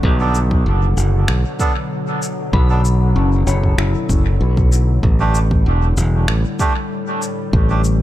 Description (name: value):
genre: ambient dub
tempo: 96 BPM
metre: 4/4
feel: swing 53% on 16ths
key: B minor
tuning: A4 = 440 Hz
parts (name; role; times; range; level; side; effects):
- warbly tape-like pad; sustained chords; 0.0-8.0 s; A2 to A4; -24 LUFS; left 2 dB; chorus, built-in reverb
- soft synth bell; arpeggios; 0.0-5.5 s; C#4 to B5; -27 LUFS; left 5 dB; chorus, dub echo
- modern bright fingered electric bass; bass; 0.0-8.0 s; E1 to B1; -15 LUFS; equal; none
- electronic kick drum; drums; 0.0-7.7 s; none; -18 LUFS; equal; overdrive
- melodica; stabs; 0.2-7.8 s; A3 to A4; -24 LUFS; right 4 dB; dub echo
- electronic shaker and finger snaps; drums; 0.3-8.0 s; none; -27 LUFS; left 1 dB; overdrive, dub echo
room: digital ambience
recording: none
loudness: -14 LUFS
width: side -14 dB against mid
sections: 0.0-8.0 A section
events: none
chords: 0.0 Bm7; 5.0 A7sus4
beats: | 0.03 0.66 1.28 1.91 | 2.53 3.16 3.78 4.41 | 5.03 5.66 6.28 6.91 | 7.53